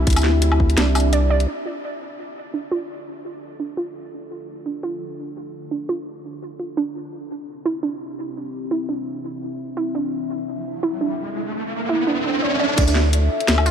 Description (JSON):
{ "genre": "half-time drum and bass", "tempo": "170 BPM", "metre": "4/4", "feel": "swing 56% on 16ths, half-time", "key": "D minor", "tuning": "A4 = 440 Hz", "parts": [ { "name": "dark analog pad", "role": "sustained chords", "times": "0.0-13.7 s", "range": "C4 to E5", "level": "-29 LUFS", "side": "left 3 dB", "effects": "chorus, phaser, sidechain pumping" }, { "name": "saturated sub bass", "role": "bass", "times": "0.0-1.5, 12.8-13.7 s", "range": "C2 to D2", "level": "-18 LUFS", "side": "equal", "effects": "tube saturation" }, { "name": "drum and bass drum kit", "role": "drums", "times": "0.1-1.5, 12.8-13.7 s", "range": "crash cymbal, hi-hat, snare drum, tambourine, woodblock", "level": "-23 LUFS", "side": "left 2 dB", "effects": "overdrive, low-pass filter on hats, studio reverb, low-pass filter on perc, low-pass filter on snare, low-pass filter on cymbals" }, { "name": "electronic kick drum", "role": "drums", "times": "0.1-0.7, 12.8-12.9 s", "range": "none", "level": "-18 LUFS", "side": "equal", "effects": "overdrive, studio reverb" }, { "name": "warbly dusty pluck", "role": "arpeggios", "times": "0.8-13.7 s", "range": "D4 to D5", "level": "-26 LUFS", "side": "right 4 dB", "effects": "chorus, dub echo" }, { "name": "riser", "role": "sound effects", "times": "10.9-12.8 s", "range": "none", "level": "-25 LUFS", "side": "right 1 dB", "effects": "none" } ], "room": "light reverb", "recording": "dark, warm production", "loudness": "-20 LUFS", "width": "side -8 dB against mid", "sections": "0.0-1.5 A section; 1.5-12.8 B section", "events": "drop 0.0-1.5; kick drops out 1.1-1.5; filter sweep on analog synth pad 1.5-12.8; filter sweep on synth pluck 1.5-12.8; riser 10.9-12.8", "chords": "0.0 C; 1.5 Dmadd9; 7.1 C; 12.8 Dmadd9", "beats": "| 0.07 0.42 0.78 1.13 | 1.48 1.83 2.19 2.54 | 2.89 3.25 3.60 3.95 | 4.30 4.66 5.01 5.36 | 5.72 6.07 6.42 6.78 | 7.13 7.48 7.83 8.19 | 8.54 8.89 9.25 9.60 | 9.95 10.30 10.66 11.01 | 11.36 11.72 12.07 12.42 | 12.78 13.13 13.48" }